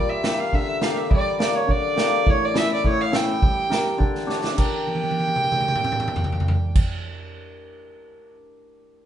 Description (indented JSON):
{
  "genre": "klezmer",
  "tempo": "103 BPM",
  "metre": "2/4",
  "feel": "straight",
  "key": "G dorian sharp4",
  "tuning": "A4 = 440 Hz",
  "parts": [
    { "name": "warm violin", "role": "melody", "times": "0.0-6.8 s", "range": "C#5 to G5", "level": "-24 LUFS", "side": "right 1 dB", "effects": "slapback echo" },
    { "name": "hammered dulcimer", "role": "accompaniment", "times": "0.0-8.3 s", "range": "A2 to C#5", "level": "-26 LUFS", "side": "left 2 dB", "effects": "none" },
    { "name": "street-band drum kit", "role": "drums", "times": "0.2-8.4 s", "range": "crash cymbal, kick drum, snare drum, toms", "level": "-23 LUFS", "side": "right 1 dB", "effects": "none" }
  ],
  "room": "wet studio ambience, RT60 0.5 s",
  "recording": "heard from further back in the room, nothing above 10.8 kHz",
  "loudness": "-19 LUFS",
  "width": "side -10 dB against mid",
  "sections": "0.0-4.6 A section; 4.6-6.9 B section",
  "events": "drum fill 4.3, 4.9-6.8",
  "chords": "0.0 Gm; 2.3 A; 3.4 Gm"
}